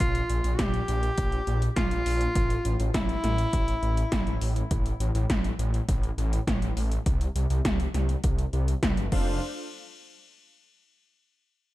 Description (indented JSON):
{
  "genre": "synthwave",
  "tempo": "102 BPM",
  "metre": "4/4",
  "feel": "straight",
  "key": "unclear",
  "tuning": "A4 = 440 Hz",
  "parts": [
    { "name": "clear tenor saxophone", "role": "melody", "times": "0.0-4.6 s", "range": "E4 to G4", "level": "-30 LUFS", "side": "equal", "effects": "tape echo" },
    { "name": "wide detuned saw bass", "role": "bass", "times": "0.0-9.4 s", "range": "F1 to C2", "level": "-27 LUFS", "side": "equal", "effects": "chorus, sidechain pumping" },
    { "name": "80s electronic pad drums", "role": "drums", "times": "0.0-9.2 s", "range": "crash cymbal, hi-hat, snare drum", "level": "-32 LUFS", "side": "equal", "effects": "none" },
    { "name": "electronic kick drum", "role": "drums", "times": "0.0-9.2 s", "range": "none", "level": "-28 LUFS", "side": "equal", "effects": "none" },
    { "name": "soft supersaw", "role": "sustained chords", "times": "9.1-9.4 s", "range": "D4 to F5", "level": "-35 LUFS", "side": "equal", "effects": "sidechain pumping" }
  ],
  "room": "digital ambience",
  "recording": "dark, warm production",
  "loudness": "-24 LUFS",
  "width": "side -16 dB against mid",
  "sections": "0.0-9.4 A section; 9.4-11.7 B section",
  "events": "none",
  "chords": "0.0 Bb5; 2.4 A5; 4.7 N.C.; 7.1 C5; 9.1 F6; 9.4 N.C."
}